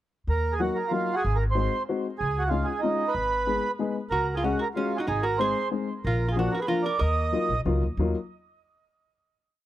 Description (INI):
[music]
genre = musette waltz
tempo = 187 BPM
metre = 3/4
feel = straight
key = Eb minor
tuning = A4 = 440 Hz
[part]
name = mellow accordion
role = melody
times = 0.3-7.6 s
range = Eb4 to Eb5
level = -27 LUFS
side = right 3 dB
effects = tape echo
[part]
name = upright bass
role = bass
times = 0.3-8.1 s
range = Ab1 to Eb2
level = -27 LUFS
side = equal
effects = none
[part]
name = dark upright piano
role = accompaniment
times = 0.6-8.1 s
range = F3 to Ab4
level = -29 LUFS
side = left 5 dB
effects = none
[part]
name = archtop guitar, miked and amplified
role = second line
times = 4.1-7.6 s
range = Db4 to Bb4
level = -31 LUFS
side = right 1 dB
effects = none
[sound]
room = little or no reverb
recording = dry, close 1970s-style studio recording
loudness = -24 LUFS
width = side -13 dB against mid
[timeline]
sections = 0.3-8.0 A section; 8.0-9.0 final chord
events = none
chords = 0.3 Ebm; 1.2 Ab7; 2.2 Dbadd9; 3.1 Abm; 4.1 Dbsus4; 5.1 Ab; 6.0 Bb; 7.0 Ebmadd9